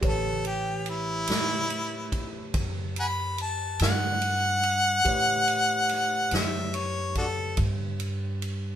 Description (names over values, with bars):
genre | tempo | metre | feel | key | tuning
slow blues | 48 BPM (dotted quarters) | 12/8 | straight | unclear | A4 = 440 Hz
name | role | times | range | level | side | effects
overdriven tine electric piano | accompaniment | 0.0-8.8 s | G4 to C#5 | -37 LUFS | equal | none
upright bass | bass | 0.0-8.8 s | A1 to A2 | -32 LUFS | right 1 dB | none
swinging big-band drum kit | drums | 0.0-8.6 s | kick drum, ride cymbal, snare drum | -32 LUFS | right 1 dB | none
clear harmonica | melody | 0.1-7.6 s | D4 to B5 | -26 LUFS | left 1 dB | none
room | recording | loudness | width
moderate studio reverb, RT60 0.6 s | band playing live in one room | -24 LUFS | side -10 dB against mid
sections
0.0-8.8 A section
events
harmonica solo 0.0-8.8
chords
0.0 A7